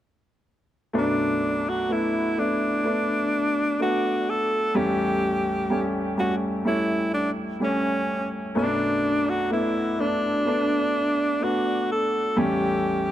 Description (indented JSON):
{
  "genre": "pop",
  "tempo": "63 BPM",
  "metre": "4/4",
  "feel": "straight",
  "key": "B minor",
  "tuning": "A4 = 440 Hz",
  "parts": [
    { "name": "clear baby grand piano", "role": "accompaniment", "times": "0.9-13.1 s", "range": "A1 to C#5", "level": "-25 LUFS", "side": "left 1 dB", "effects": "none" },
    { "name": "edgy alto saxophone", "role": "melody", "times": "1.0-13.1 s", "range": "C#4 to A4", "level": "-24 LUFS", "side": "equal", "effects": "dub echo" }
  ],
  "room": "light reverb",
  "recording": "echo-heavy mix",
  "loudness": "-22 LUFS",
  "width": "side -12 dB against mid",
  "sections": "0.9-13.1 A section",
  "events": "none",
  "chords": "0.9 Bm7; 4.8 A7; 8.6 Bm7; 12.4 A7"
}